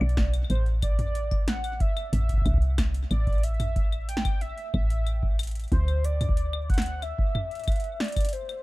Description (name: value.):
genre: IDM.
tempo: 92 BPM.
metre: 4/4.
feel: straight.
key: unclear.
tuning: A4 = 441 Hz.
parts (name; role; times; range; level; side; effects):
warm velvety synth lead; melody; 0.0-8.6 s; C5 to G5; -34 LUFS; equal; chorus, digital delay.
woody FM bass; bass; 0.0-7.1 s; A1 to D2; -26 LUFS; equal; tube saturation.
electro analog drum machine; drums; 0.0-8.6 s; claves, hi-hat, snare drum, toms; -33 LUFS; equal; none.
electronic kick drum; drums; 0.2-8.3 s; none; -26 LUFS; equal; none.
room: digital ambience.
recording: dark, warm production.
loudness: -24 LUFS.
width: side -20 dB against mid.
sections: 0.0-8.6 A section.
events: break 8.3-8.6.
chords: 0.0 Bm; 0.5 A5; 5.7 D9.